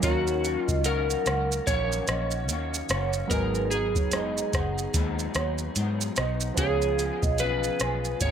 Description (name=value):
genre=indie pop, bedroom pop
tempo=73 BPM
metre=4/4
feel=swing 60% on 16ths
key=unclear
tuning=A4 = 440 Hz
part: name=electric slide guitar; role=melody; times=0.0-8.3 s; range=F#4 to C#5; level=-29 LUFS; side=left 2 dB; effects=wide subtle chorus, digital delay
part: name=vibraphone with soft mallets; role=second line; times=0.0-8.0 s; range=B4 to G#5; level=-34 LUFS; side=right 7 dB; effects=analog chorus, digital delay
part: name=electric guitar through a small old amp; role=accompaniment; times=0.0-8.3 s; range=G#2 to G#4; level=-34 LUFS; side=left 3 dB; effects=ensemble chorus, vibrato effect
part: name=warm analog keys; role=accompaniment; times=0.0-8.3 s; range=E#3 to A#4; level=-36 LUFS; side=right 6 dB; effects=chorus, cassette tape
part: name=vintage muted fingered electric bass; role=bass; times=0.0-8.3 s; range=F#1 to G#2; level=-30 LUFS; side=equal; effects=none
part: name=soft vintage rhythm box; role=drums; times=0.0-8.3 s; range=hi-hat, kick drum, rim click, shaker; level=-29 LUFS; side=equal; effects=none
room=light reverb, digital ambience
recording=none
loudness=-24 LUFS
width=side -8 dB against mid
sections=0.0-8.3 A section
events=none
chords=0.0 D#m7; 3.3 G#m7; 6.6 C#7